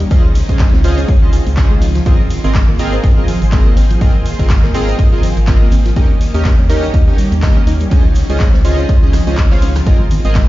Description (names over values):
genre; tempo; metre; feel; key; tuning
deep house; 123 BPM; 4/4; swing 56% on 16ths; Ab major; A4 = 440 Hz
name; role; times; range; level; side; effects
soft string machine; sustained chords; 0.0-10.5 s; Bb3 to C5; -26 LUFS; equal; ensemble chorus, sidechain pumping
soft round pluck; arpeggios; 0.0-10.4 s; F3 to Ab4; -24 LUFS; left 1 dB; chorus, sidechain pumping, analog delay
organ-like FM bass; bass; 0.0-10.4 s; Ab1 to Eb2; -15 LUFS; equal; sidechain pumping
punchy analog drum machine; drums; 0.0-10.5 s; handclaps, hi-hat, rim click; -27 LUFS; equal; studio reverb
egg shaker; percussion; 0.0-10.5 s; none; -41 LUFS; right 2 dB; none
chorused polysynth; stabs; 0.1-10.3 s; C4 to F5; -21 LUFS; right 2 dB; sidechain pumping, tape echo
electronic kick drum; drums; 0.1-10.5 s; none; -12 LUFS; equal; studio reverb
vintage brush drum kit; drums; 0.1-10.5 s; hi-hat, ride cymbal, snare drum; -34 LUFS; left 2 dB; high-pass filter on cymbals, studio reverb, high-pass filter on hats, high-pass filter on snare, high-pass filter on room
congas; percussion; 9.9-10.3 s; none; -22 LUFS; left 2 dB; none
room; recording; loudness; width
small room ambience; played on a big sound system in a bare room, stone room reverb, nothing above 7.5 kHz; -10 LUFS; side -16 dB against mid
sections
0.0-10.5 A section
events
none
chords
0.1 Dbmaj9; 2.1 Ab69; 6.0 Eb7; 7.9 Dbmaj9; 9.9 Ab69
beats
| 0.11 0.60 1.08 1.57 | 2.06 2.55 3.04 3.52 | 4.01 4.50 4.99 5.47 | 5.96 6.45 6.94 7.43 | 7.91 8.40 8.89 9.38 | 9.87 10.35